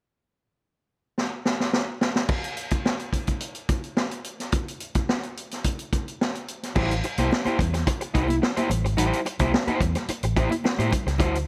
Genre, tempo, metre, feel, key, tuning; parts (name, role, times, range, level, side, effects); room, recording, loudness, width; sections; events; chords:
funk; 108 BPM; 4/4; straight; A dorian; A4 = 440 Hz
vintage drum kit; drums; 1.2-11.5 s; crash cymbal, hi-hat, kick drum, snare drum; -28 LUFS; equal
crunchy overdriven guitar; accompaniment; 6.8-11.4 s; E4 to C5; -29 LUFS; equal
vintage muted fingered electric bass; bass; 6.8-11.4 s; G#1 to A2; -28 LUFS; equal
congas; percussion; 6.8-11.3 s; -35 LUFS; equal
little or no reverb; -26 LUFS; mono
0.1-2.3 A section; 2.3-6.8 B section; 6.8-11.5 C section
drum fill 1.2-2.3
0.1 N.C.; 6.8 Am7